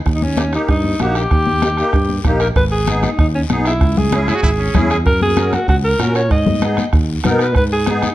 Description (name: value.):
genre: latin, cumbia.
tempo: 192 BPM.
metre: 4/4.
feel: straight.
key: G# minor.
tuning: A4 = 440 Hz.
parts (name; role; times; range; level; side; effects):
fingered electric bass; bass; 0.1-8.1 s; G#1 to B2; -19 LUFS; equal; none.
bombo; percussion; 0.1-8.1 s; none; -18 LUFS; right 2 dB; none.
congas; percussion; 0.1-8.1 s; none; -22 LUFS; left 4 dB; none.
guiro; percussion; 0.1-8.1 s; none; -32 LUFS; left 6 dB; none.
clear alto saxophone; melody; 0.2-8.1 s; C#4 to D#5; -19 LUFS; equal; plate reverb.
musette accordion; accompaniment; 0.4-8.1 s; A#3 to A#4; -21 LUFS; left 1 dB; none.
brilliant trumpet; second line; 4.3-4.8 s; C#4 to F#4; -24 LUFS; right 3 dB; none.
room: light reverb.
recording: dark, warm production.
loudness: -13 LUFS.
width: side -15 dB against mid.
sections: 0.0-2.6 A section; 2.6-8.1 B section.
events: none.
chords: 0.1 D#; 2.6 G#m; 3.8 C#m; 5.1 F#; 6.3 G#m.